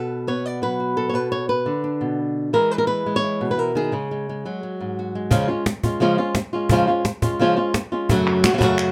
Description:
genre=flamenco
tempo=173 BPM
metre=4/4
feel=straight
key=C# phrygian dominant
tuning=A4 = 440 Hz
part: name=flamenco guitar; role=melody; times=0.0-8.9 s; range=F#2 to D5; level=-22 LUFS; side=equal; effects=none
part: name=cajon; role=percussion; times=5.3-8.8 s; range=none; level=-24 LUFS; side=equal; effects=none
part: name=palmas hand claps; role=percussion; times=8.3-8.9 s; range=none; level=-27 LUFS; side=equal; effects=none
room=light reverb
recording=close, detailed microphones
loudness=-22 LUFS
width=mono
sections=0.0-5.3 A section; 5.3-8.9 B section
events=none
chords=0.0 Bm7; 2.5 E; 3.9 C#sus4; 5.3 C#; 8.1 F#m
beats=0.10 0.45 0.80 | 1.14 1.49 1.84 2.19 | 2.54 2.88 3.23 3.58 | 3.92 4.27 4.62 4.97 | 5.32 5.66 6.01 6.36 | 6.70 7.05 7.40 7.75 | 8.09 8.44 8.79

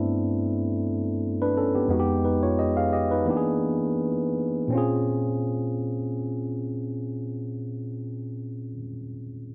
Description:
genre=R&B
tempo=80-93 BPM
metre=4/4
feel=swing 54% on 16ths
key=unclear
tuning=A4 = 440 Hz
part: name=barky tine electric piano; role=solo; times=0.0-9.5 s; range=F2 to F5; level=-27 LUFS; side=equal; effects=overdrive
room=light reverb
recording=none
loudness=-27 LUFS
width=mono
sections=0.0-4.7 A section; 4.7-7.7 B section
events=slowing down 0.0-4.7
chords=0.0 G6; 1.9 Fm7b5; 3.3 E7#11; 4.7 Bbm9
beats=0.56 1.22 | 1.88 2.56 3.26 3.97 | 4.71 5.46 6.21 6.96

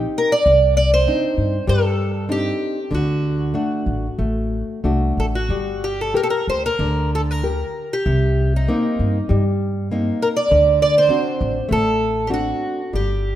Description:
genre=fado-style ballad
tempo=90-102 BPM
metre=4/4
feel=rubato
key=unclear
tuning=A4 = 440 Hz
part: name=nylon-string guitar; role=accompaniment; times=0.0-13.4 s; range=C3 to Bb4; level=-23 LUFS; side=left 1 dB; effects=none
part: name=upright bass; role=bass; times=0.0-13.4 s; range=G1 to G2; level=-21 LUFS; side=equal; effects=none
part: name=fingerpicked twelve-string acoustic guitar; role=melody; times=0.2-13.4 s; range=Eb4 to D5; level=-20 LUFS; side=right 1 dB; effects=none
room=moderate concert hall reverb, RT60 1.8 s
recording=none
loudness=-17 LUFS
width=side -12 dB against mid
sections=0.0-13.4 A section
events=none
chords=0.5 Cmadd9; 2.9 D; 5.5 Gmadd9; 8.1 Cm7; 10.5 D7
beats=| 0.46 1.07 1.68 2.29 | 2.92 3.55 4.19 4.85 | 5.50 6.15 6.80 7.43 | 8.06 8.69 9.30 9.91 | 10.51 11.10 11.70 12.31 | 12.93

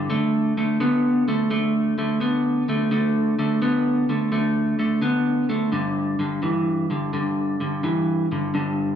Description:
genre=blues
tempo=85 BPM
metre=4/4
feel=swing 68% on 8ths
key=unclear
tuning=A4 = 440 Hz
part: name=clean electric guitar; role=solo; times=0.0-9.0 s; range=G2 to B3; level=-20 LUFS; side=equal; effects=none
room=wet large studio reverb, RT60 1.4 s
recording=band playing live in one room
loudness=-20 LUFS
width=side -9 dB against mid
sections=0.0-9.0 A section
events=none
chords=0.1 D5; 5.7 G5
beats=| 0.10 0.80 1.50 2.21 | 2.91 3.61 4.32 5.02 | 5.72 6.42 7.13 7.83 | 8.54

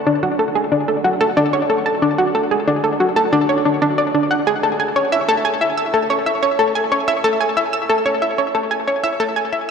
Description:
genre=ambient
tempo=92 BPM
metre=4/4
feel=straight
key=unclear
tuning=A4 = 443 Hz
part: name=analog pluck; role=solo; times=0.1-9.6 s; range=D4 to E6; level=-15 LUFS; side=equal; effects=chorus, ping-pong delay
room=wet cathedral reverb, RT60 5.3 s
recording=dreamy mix soaked in reverb, cassette tape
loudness=-15 LUFS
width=side -6 dB against mid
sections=0.0-9.7 A section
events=fade-out 8.1-9.7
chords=none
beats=0.07 0.72 1.37 | 2.02 2.68 3.33 3.98 | 4.63 5.29 5.94 6.59 | 7.24 7.89 8.55 9.20

